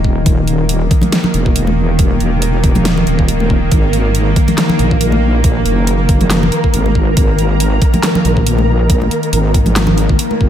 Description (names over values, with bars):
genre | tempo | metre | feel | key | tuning
deep dubstep | 139 BPM | 4/4 | swing 55% on 16ths, half-time | unclear | A4 = 440 Hz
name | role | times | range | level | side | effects
bowed-like drone | sustained chords | 0.0-10.5 s | Eb3 to Bb3 | -17 LUFS | equal | built-in reverb
wobble bass | bass | 0.0-10.5 s | Eb1 to Bb1 | -14 LUFS | equal | chorus
electronic kick drum | drums | 0.0-10.5 s | none | -13 LUFS | equal | overdrive
dubstep drum kit | drums | 0.3-10.3 s | handclaps, hi-hat, snare drum | -19 LUFS | equal | overdrive
congas | percussion | 1.0-10.4 s | none | -20 LUFS | equal | dub echo
flickering grainy texture | texture | 4.4-10.5 s | Bb4 | -22 LUFS | right 1 dB | built-in reverb, analog chorus
room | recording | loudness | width
light reverb | none | -10 LUFS | side -10 dB against mid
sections
0.0-10.5 A section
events
none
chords
0.0 Eb5; 3.7 Absus2